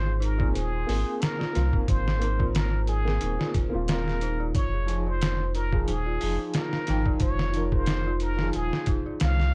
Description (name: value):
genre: trip hop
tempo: 90 BPM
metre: 4/4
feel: swing 55% on 16ths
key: F minor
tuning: A4 = 440 Hz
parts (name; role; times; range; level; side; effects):
- trumpet with plunger mute; melody; 0.0-9.5 s; Ab4 to F5; -36 LUFS; equal; tape echo
- dark detuned synth bell; arpeggios; 0.0-9.5 s; Eb4 to C5; -37 LUFS; equal; chorus, tape echo
- soft dub sub bass; bass; 0.0-9.5 s; Eb1 to C2; -29 LUFS; equal; none
- trip hop sampler-style drum kit; drums; 0.2-9.5 s; hi-hat, kick drum, snare drum; -30 LUFS; equal; none
- dark upright piano; accompaniment; 0.4-9.5 s; F3 to G5; -36 LUFS; equal; tremolo, vintage 12-bit sampler grit
room: digital ambience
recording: dark, warm production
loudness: -26 LUFS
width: mono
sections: 0.0-9.5 A section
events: none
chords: 0.0 Abadd9; 4.5 Fm7